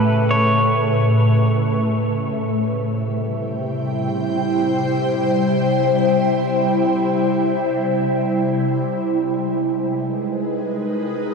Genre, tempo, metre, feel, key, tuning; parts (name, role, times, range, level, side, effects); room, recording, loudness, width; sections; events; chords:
ambient; free time; A4 = 440 Hz
pedal steel guitar; melody; 0.0-1.5 s; B4 to C#5; -23 LUFS; equal; ping-pong delay
ethereal airy pad; sustained chords; 0.0-11.3 s; A2 to G5; -17 LUFS; equal; ensemble chorus, built-in reverb, phaser
wet huge ambient reverb, RT60 7.8 s; -17 LUFS; side -4 dB against mid
0.0-11.3 A section
0.0 Aadd9; 2.0 C; 8.7 G#m7